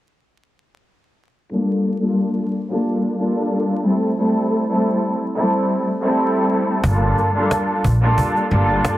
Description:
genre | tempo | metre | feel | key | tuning
hip hop, boom-bap hip-hop | 90 BPM | 4/4 | swing 55% on 16ths | G dorian | A4 = 440 Hz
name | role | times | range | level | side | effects
muted studio string section | accompaniment | 1.5-9.0 s | G3 to A4 | -17 LUFS | equal | cassette tape, high-pass filter, low-pass filter
upright bass | bass | 6.8-8.8 s | G1 to Bb1 | -18 LUFS | equal | none
cajon | drums | 6.8-9.0 s | none | -23 LUFS | equal | none
room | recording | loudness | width
light reverb | dense, heavily limited modern master, vinyl crackle | -16 LUFS | side -15 dB against mid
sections
1.5-9.0 A section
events
filter sweep on string section 1.5-9.0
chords
1.5 Gm9; 3.8 Am7; 6.8 Gm9

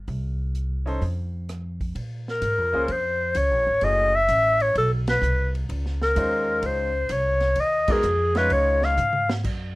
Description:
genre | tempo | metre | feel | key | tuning
jazz, small-group swing and bop | 128 BPM | 4/4 | swing 68% on 8ths | Bb minor | A4 = 440 Hz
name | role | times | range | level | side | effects
upright bass | bass | 0.0-9.8 s | Gb1 to Bb2 | -26 LUFS | equal | none
vintage drum kit | drums | 0.1-9.6 s | crash cymbal, hi-hat, kick drum, ride cymbal, rim click, snare drum, toms | -33 LUFS | equal | none
clear grand piano | accompaniment | 0.9-9.0 s | Ab3 to Db5 | -29 LUFS | equal | none
breathy clarinet | melody | 2.3-9.3 s | Ab4 to F5 | -21 LUFS | left 1 dB | none
room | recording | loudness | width
moderate small room reverb, RT60 0.6 s | rough home demo mix | -20 LUFS | side -20 dB against mid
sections
0.0-2.0 A section; 2.0-9.8 B section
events
band accent 5.0, 7.8; drum fill 9.0-9.4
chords
0.1 Cm6; 1.0 N.C.; 2.0 Bbm9; 3.8 Gbm7; 4.8 Amadd9/B (rootless); 5.7 Dbmaj7; 7.6 Abm7; 8.5 Db

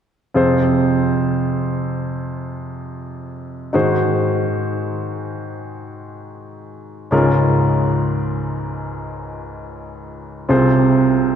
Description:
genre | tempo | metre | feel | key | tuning
pop | free time | none | none | F minor | A4 = 441 Hz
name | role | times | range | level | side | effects
clear baby grand piano | accompaniment | 0.3-11.4 s | C2 to C5 | -17 LUFS | equal | none
room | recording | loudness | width
wet church reverb, RT60 3.4 s | recorded in a church or concert hall | -16 LUFS | side -8 dB against mid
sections
0.4-11.4 A section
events
none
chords
0.4 Fm; 3.7 Ab7; 7.1 Db6; 10.5 Fm/C

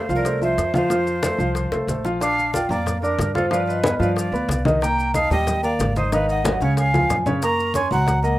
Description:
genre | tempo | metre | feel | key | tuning
Afro-Cuban jazz | 184 BPM | 4/4 | straight | unclear | A4 = 440 Hz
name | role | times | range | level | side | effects
vibraphone with medium mallets | melody | 0.0-8.4 s | C5 to Db6 | -26 LUFS | right 1 dB | plate reverb
breathy bright jazz flute | second line | 0.0-8.4 s | A4 to Bb5 | -26 LUFS | right 1 dB | none
warm grand piano | accompaniment | 0.0-8.4 s | Db3 to F6 | -22 LUFS | equal | plate reverb
upright bass | bass | 0.0-8.4 s | Ab1 to G2 | -25 LUFS | equal | none
congas | percussion | 0.1-8.4 s | none | -26 LUFS | left 1 dB | none
maracas | percussion | 0.1-8.4 s | none | -37 LUFS | left 4 dB | none
bongos | percussion | 0.2-8.4 s | none | -32 LUFS | left 4 dB | none
room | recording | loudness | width
light reverb | rough home demo mix | -18 LUFS | side -15 dB against mid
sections
0.0-2.2 A section; 2.2-8.4 B section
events
drum fill 1.7-2.2, 6.9-7.4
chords
0.0 Fmaj7; 2.2 Bb6; 3.5 G7b13; 4.8 Cm11; 6.1 Ab5; 6.8 Db; 7.4 Gb

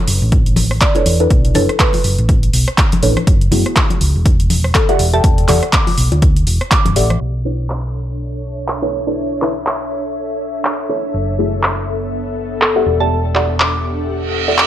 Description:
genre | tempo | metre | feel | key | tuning
deep house | 122 BPM | 4/4 | swing 58% on 16ths | B minor | A4 = 440 Hz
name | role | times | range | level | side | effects
deep mellow chord stab | stabs | 0.0-14.7 s | A3 to G5 | -19 LUFS | equal | chorus, sidechain pumping, tape echo
hollow-body short-scale fingered electric bass | bass | 0.1-14.7 s | E1 to F#2 | -18 LUFS | equal | low-pass filter
deep house drum kit | drums | 0.1-14.7 s | handclaps, hi-hat, rim click | -18 LUFS | right 1 dB | overdrive, studio reverb
electronic kick drum | drums | 0.3-6.8 s | none | -14 LUFS | equal | overdrive, studio reverb
congas and bongos | percussion | 0.6-7.2 s | none | -22 LUFS | left 3 dB | none
mallet-like synth pluck | melody | 0.8-7.2, 12.6-14.7 s | A4 to D6 | -20 LUFS | left 1 dB | chorus, tape echo
ethereal airy pad | texture | 7.9-14.7 s | B3 to F#5 | -22 LUFS | left 1 dB | ensemble chorus, built-in reverb, sidechain pumping
reverse cymbal | sound effects | 14.2-14.7 s | none | -17 LUFS | right 9 dB | none
room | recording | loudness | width
digital ambience | low-pass filter | -13 LUFS | side -12 dB against mid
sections
0.0-7.2 A section; 7.2-14.7 B section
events
filter sweep on synth stab 7.2-14.7; filter sweep 7.2-14.7; reverse cymbal 14.2-14.7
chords
0.0 Bm11; 3.3 F#m11; 5.0 Em11; 7.2 Bm11; 11.1 F#m11; 12.9 Em11

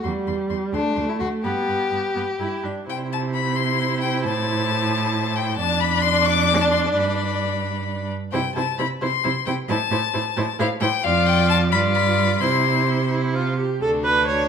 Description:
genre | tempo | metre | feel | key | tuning
quick classical-period movement for string quartet | 87 BPM (dotted quarters) | 6/8 | straight | C major | A4 = 439 Hz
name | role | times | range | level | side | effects
rich violin | melody | 0.0-14.5 s | F#4 to D6 | -24 LUFS | left 10 dB | none
warm violin | second line | 0.0-14.5 s | D4 to D5 | -27 LUFS | left 3 dB | none
rich viola | accompaniment | 0.1-14.5 s | G3 to C#5 | -25 LUFS | right 2 dB | none
rich cello | bass | 0.1-14.5 s | D2 to C3 | -24 LUFS | right 4 dB | none
room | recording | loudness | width
moderate recital hall reverb, RT60 1.4 s | none | -19 LUFS | side -7 dB against mid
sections
0.0-2.9 A section; 2.9-13.8 B section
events
none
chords
0.1 C; 0.7 D5; 1.4 G; 2.9 C; 4.2 Am; 5.6 Dm/F; 6.9 G; 8.3 C; 9.7 Am; 11.0 Dm/F; 11.7 G7; 12.4 C; 13.8 D

